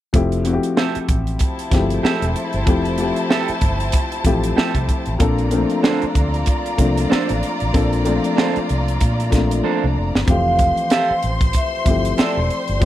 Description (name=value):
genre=lush 1970s-style soul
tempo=95 BPM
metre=4/4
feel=swing 58% on 16ths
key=F major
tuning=A4 = 440 Hz
part: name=dark grand piano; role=accompaniment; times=0.1-12.8 s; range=E3 to A4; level=-22 LUFS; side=left 3 dB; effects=none
part: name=vintage muted fingered electric bass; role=bass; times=0.1-12.8 s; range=E1 to Bb2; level=-22 LUFS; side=equal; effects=none
part: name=tight funk drum kit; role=drums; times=0.1-12.8 s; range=hi-hat, kick drum, snare drum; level=-19 LUFS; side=equal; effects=none
part: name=electric guitar at the edge of break-up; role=riff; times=0.8-12.4 s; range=D4 to E5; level=-25 LUFS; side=right 10 dB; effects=spring reverb
part: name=rich studio violin section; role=second line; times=1.4-12.8 s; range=E4 to C6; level=-26 LUFS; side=left 1 dB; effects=none
part: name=vibraphone with medium hard mallets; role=melody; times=10.3-12.8 s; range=C5 to F5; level=-20 LUFS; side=equal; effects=slapback echo
room=light reverb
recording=dry, close 1970s-style studio recording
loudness=-16 LUFS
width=side -13 dB against mid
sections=0.1-10.3 A section; 10.3-12.8 B section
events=drum fill 9.6-10.3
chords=0.1 Fmaj9; 5.2 Bbmaj9; 10.3 Fmaj9